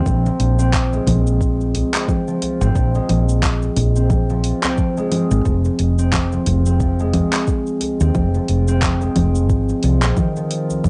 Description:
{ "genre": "organic downtempo", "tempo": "89 BPM", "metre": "4/4", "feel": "swing 57% on 16ths", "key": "F minor", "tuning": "A4 = 440 Hz", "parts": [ { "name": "concert harp", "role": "arpeggios", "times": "0.0-10.9 s", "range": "Eb3 to C4", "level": "-23 LUFS", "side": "equal", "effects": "cassette tape, analog delay" }, { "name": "woody fretless electric bass", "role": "bass", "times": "0.1-10.9 s", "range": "F1 to Eb2", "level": "-20 LUFS", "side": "equal", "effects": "transformer saturation, sidechain pumping" }, { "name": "deep house drum kit", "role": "drums", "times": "0.1-10.9 s", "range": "cabasa, congas, handclaps, hi-hat", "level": "-24 LUFS", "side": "equal", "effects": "cassette tape" }, { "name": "electronic kick drum", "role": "drums", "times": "0.1-10.9 s", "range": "none", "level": "-23 LUFS", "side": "equal", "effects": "overdrive, cassette tape" }, { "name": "djembe", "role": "percussion", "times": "0.3-10.8 s", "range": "none", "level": "-32 LUFS", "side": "equal", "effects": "none" } ], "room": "little or no reverb", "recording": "home recording on cassette, nothing above 10.7 kHz", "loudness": "-18 LUFS", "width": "mono", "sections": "0.0-10.9 A section", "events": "none", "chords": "0.1 Bb5; 5.5 Fm7", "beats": "| 0.06 0.73 1.41 2.08 | 2.76 3.43 4.11 4.78 | 5.45 6.13 6.80 7.48 | 8.15 8.82 9.50 10.17 | 10.85" }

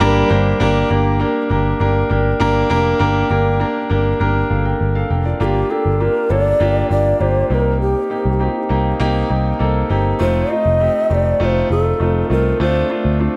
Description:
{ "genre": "1980s-style pop", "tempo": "100 BPM", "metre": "4/4", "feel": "straight", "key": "G minor", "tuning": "A4 = 440 Hz", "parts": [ { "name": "mellow long shakuhachi", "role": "melody", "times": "0.0-0.3, 5.4-13.2 s", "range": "G4 to Eb5", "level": "-21 LUFS", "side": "equal", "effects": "digital delay" }, { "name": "clear grand piano", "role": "accompaniment", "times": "0.0-13.4 s", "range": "G3 to G5", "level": "-20 LUFS", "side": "equal", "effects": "none" }, { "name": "vintage muted picked electric bass", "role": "bass", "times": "0.0-13.3 s", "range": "F1 to D2", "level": "-20 LUFS", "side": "equal", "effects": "none" } ], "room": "moderate lush hall reverb, RT60 2.4 s", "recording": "none", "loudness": "-17 LUFS", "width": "mono", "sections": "0.6-5.4 A section; 5.4-13.4 B section", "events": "none", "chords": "0.0 Gm; 5.4 Gm7; 7.5 Cm7; 10.2 F7; 12.6 Dm7", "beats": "0.00 | 0.60 1.20 1.80 2.40 | 3.00 3.60 4.20 4.80 | 5.40 6.00 6.60 7.20 | 7.80 8.40 9.00 9.60 | 10.20 10.80 11.40 12.00 | 12.60 13.20" }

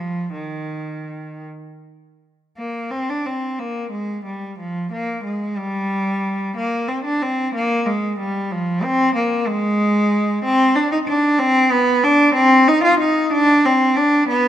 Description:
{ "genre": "classical, baroque-style suite movement for unaccompanied cello", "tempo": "52-64 BPM (dotted quarters)", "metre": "6/8", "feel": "rubato", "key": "unclear", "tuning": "A4 = 440 Hz", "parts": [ { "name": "rich cello", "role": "solo", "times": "0.0-14.5 s", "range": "Eb3 to F4", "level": "-16 LUFS", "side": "equal", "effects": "none" } ], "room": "moderate scoring stage reverb, RT60 1.8 s", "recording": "none", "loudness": "-16 LUFS", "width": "side -11 dB against mid", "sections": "0.0-2.6 A section; 2.6-14.5 B section", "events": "none", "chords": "none", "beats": "| 0.34 1.47 | 2.58 3.59 | 4.59 5.58 | 6.55 7.54 | 8.51 9.49 | 10.45 11.40 | 12.36 13.33 | 14.29" }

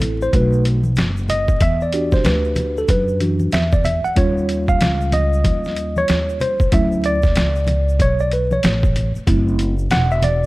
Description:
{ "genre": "hip hop, jazz-hop", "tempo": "94 BPM", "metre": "4/4", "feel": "swing 62% on 16ths", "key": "unclear", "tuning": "A4 = 440 Hz", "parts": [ { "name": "tine electric piano", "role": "accompaniment", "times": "0.0-10.5 s", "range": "E3 to F#5", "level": "-20 LUFS", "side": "right 1 dB", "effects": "medium stereo tremolo" }, { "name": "upright bass", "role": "bass", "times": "0.0-10.5 s", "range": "E1 to F#2", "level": "-20 LUFS", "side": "equal", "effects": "none" }, { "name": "trip hop sampler-style drum kit", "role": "drums", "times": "0.0-10.4 s", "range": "hi-hat, kick drum, snare drum", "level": "-19 LUFS", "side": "equal", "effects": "none" }, { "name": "congas and tube shaker", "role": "percussion", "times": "0.0-10.5 s", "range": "none", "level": "-27 LUFS", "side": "left 1 dB", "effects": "none" } ], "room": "little or no reverb", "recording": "vinyl crackle", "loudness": "-15 LUFS", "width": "side -20 dB against mid", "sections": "0.0-10.5 A section", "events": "tine electric piano solo 0.0-10.5", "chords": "0.3 B7; 1.6 Em9; 4.2 D#9; 6.7 Dmaj7; 9.3 F#m7b5", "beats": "0.34 0.98 | 1.61 2.25 2.89 3.53 | 4.17 4.81 5.45 6.08 | 6.72 7.36 8.00 8.64 | 9.28 9.91" }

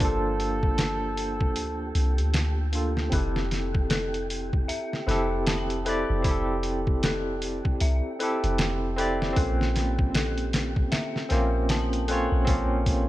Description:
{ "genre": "trip hop", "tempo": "77 BPM", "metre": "4/4", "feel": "swing 60% on 16ths", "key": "unclear", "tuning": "A4 = 439 Hz", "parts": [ { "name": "trumpet with bucket mute", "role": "melody", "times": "0.0-2.3 s", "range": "A4", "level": "-34 LUFS", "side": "right 1 dB", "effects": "tape echo" }, { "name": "barky tine electric piano", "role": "accompaniment", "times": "0.0-13.1 s", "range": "Bb3 to D5", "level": "-29 LUFS", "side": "equal", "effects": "tremolo, tape echo" }, { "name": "soft 808-style bass", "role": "bass", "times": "0.0-13.1 s", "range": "F1 to D2", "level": "-28 LUFS", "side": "equal", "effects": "none" }, { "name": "trip hop sampler-style drum kit", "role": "drums", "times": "0.0-13.1 s", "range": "hi-hat, kick drum, snare drum", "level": "-27 LUFS", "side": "equal", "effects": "none" }, { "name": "wind-like tuned noise texture", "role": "texture", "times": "0.0-13.1 s", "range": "G4", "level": "-41 LUFS", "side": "right 4 dB", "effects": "built-in reverb" }, { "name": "dark detuned synth bell", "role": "arpeggios", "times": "3.1-13.1 s", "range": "A4 to A5", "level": "-34 LUFS", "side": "left 4 dB", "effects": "chorus, ping-pong delay" } ], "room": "little or no reverb", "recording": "none", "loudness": "-23 LUFS", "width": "side -15 dB against mid", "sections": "0.0-13.1 A section", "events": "none", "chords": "0.0 Gm9; 3.1 Fmaj9; 9.4 Bbmadd9", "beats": "| 0.01 0.79 1.57 2.35 | 3.13 3.91 4.69 5.47 | 6.25 7.03 7.81 8.59 | 9.37 10.14 10.92 11.70 | 12.48" }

